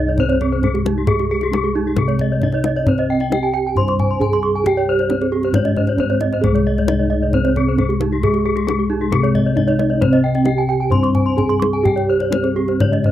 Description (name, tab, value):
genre	Balinese gamelan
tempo	134 BPM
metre	4/4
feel	straight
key	C pelog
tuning	A4 = 440 Hz
part	gamelan-type bronze metallophone	melody	0.0-13.1 s	Ab3 to C5	-21 LUFS	right 3 dB	none
part	gamelan-type bronze metallophone	arpeggios	0.0-13.0 s	Eb4 to Db6+35c	-23 LUFS	right 6 dB	none
part	gamelan-type bossed gongs	bass	0.0-13.1 s	C2 to Ab4	-20 LUFS	equal	none
part	gamelan-type bronze metallophone	arpeggios	0.1-13.1 s	G4 to C6	-23 LUFS	left 6 dB	none
part	kendang	percussion	0.2-13.1 s	none	-22 LUFS	left 2 dB	none
part	gamelan-type bronze metallophone	accompaniment	6.4-13.1 s	C3 to C4	-22 LUFS	left 4 dB	none
room	light reverb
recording	dry, close 1970s-style studio recording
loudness	-15 LUFS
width	side -12 dB against mid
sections	0.0-13.1 A section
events	none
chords	none